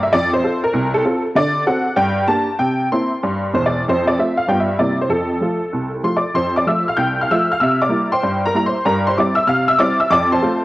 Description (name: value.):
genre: jazz, stride piano.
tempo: 192 BPM.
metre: 4/4.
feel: swing 65% on 8ths.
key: F major.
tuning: A4 = 440 Hz.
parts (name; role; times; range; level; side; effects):
honky-tonk upright piano; solo; 0.0-10.6 s; E1 to G6; -15 LUFS; equal; cassette tape.
room: light reverb, studio reverb.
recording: home recording on cassette.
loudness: -15 LUFS.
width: side -17 dB against mid.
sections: 0.0-6.4 A section; 6.4-10.6 A section.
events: none.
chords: 0.1 F; 1.4 D7; 2.0 Gm; 2.6 C7; 3.9 F; 4.5 G7; 4.8 C7; 5.1 F; 7.6 C7; 8.8 C7/G; 10.1 F.